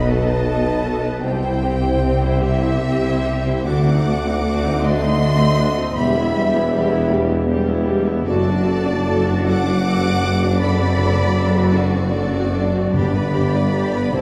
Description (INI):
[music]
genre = classical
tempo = 46-54 BPM (dotted quarters)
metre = 6/8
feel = rubato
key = unclear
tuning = A4 = 439 Hz
[part]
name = clear studio violin section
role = melody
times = 0.0-14.2 s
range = D5 to D6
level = -30 LUFS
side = equal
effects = none
[part]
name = warm symphonic violin section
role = second line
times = 0.0-14.2 s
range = F#4 to F#5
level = -28 LUFS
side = equal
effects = none
[part]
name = bright symphonic viola section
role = accompaniment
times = 0.0-14.2 s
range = G3 to C5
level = -26 LUFS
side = equal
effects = none
[part]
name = clear tuba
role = bass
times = 0.0-14.2 s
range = E1 to D2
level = -25 LUFS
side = equal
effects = none
[part]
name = warm symphonic cello section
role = bass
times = 0.0-14.2 s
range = D2 to C3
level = -24 LUFS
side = equal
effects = none
[part]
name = warm symphonic double bass section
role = bass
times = 0.0-14.2 s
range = E1 to D2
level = -25 LUFS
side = equal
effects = none
[part]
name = timpani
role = percussion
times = 12.9-14.1 s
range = G2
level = -26 LUFS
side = equal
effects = none
[sound]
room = wet concert hall reverb, RT60 1.9 s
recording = heard from further back in the room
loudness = -18 LUFS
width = mono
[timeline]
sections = 0.0-14.2 A section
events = none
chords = 0.0 B7; 1.2 C; 3.7 D7b9; 6.0 Em; 8.3 D/F#; 10.6 D7/F#; 12.9 G